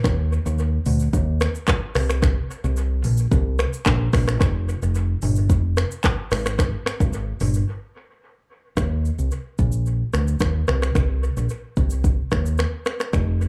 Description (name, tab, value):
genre	afrobeats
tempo	110 BPM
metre	4/4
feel	straight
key	Eb major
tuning	A4 = 440 Hz
part	fingered electric bass	bass	0.0-13.5 s	F1 to Eb2	-23 LUFS	equal	none
part	afro-pop drum kit	drums	0.0-13.5 s	finger snaps, handclaps, hi-hat, kick drum, rim click, shaker, toms	-25 LUFS	equal	dub echo
room	light reverb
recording	echo-heavy mix, small room ambience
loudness	-22 LUFS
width	mono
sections	0.0-8.8 A section; 8.8-13.5 B section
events	break 7.7-8.8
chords	none